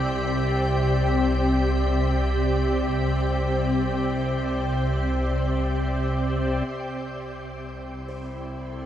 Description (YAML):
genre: ambient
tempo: free time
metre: none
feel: none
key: C major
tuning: A4 = 440 Hz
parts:
  - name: soft additive organ-like pad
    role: sustained chords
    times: 0.0-8.9 s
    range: C3 to D5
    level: -24 LUFS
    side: equal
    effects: ensemble chorus, built-in reverb
  - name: clear studio double bass section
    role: bass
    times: 0.0-8.9 s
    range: C2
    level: -27 LUFS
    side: equal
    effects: none
  - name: buzzing kalimba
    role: arpeggios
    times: 8.1-8.9 s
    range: C5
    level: -41 LUFS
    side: left 2 dB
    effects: none
room: wet shimmer reverb, RT60 7.9 s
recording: none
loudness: -22 LUFS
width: side -11 dB against mid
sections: 0.0-6.7 A section; 6.7-8.9 B section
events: none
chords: 0.0 G5/C; 6.7 C6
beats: free time